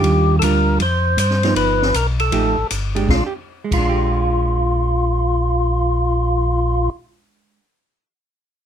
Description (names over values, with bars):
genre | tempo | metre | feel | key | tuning
soul jazz organ trio | 158 BPM | 4/4 | swing 66% on 8ths | Bb mixolydian | A4 = 440 Hz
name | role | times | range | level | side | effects
percussive tonewheel organ | melody | 0.0-6.9 s | F4 to C5 | -19 LUFS | equal | slow rotary speaker, overdrive
hollow-body jazz guitar | accompaniment | 0.0-7.7 s | Eb3 to G4 | -22 LUFS | right 6 dB | none
mellow tonewheel organ | bass | 0.0-6.9 s | G1 to G2 | -19 LUFS | left 1 dB | chorus vibrato, slow rotary speaker
open jazz drum kit | drums | 0.0-3.8 s | crash cymbal, hi-hat, kick drum, ride cymbal, snare drum | -25 LUFS | left 1 dB | none
room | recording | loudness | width
light reverb | close, detailed microphones | -16 LUFS | side -9 dB against mid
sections
0.0-3.1 A section; 3.1-6.1 B section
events
none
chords
0.0 Ebmaj9; 0.8 Fsus2; 1.6 G7b13; 2.3 F9; 3.1 Bb6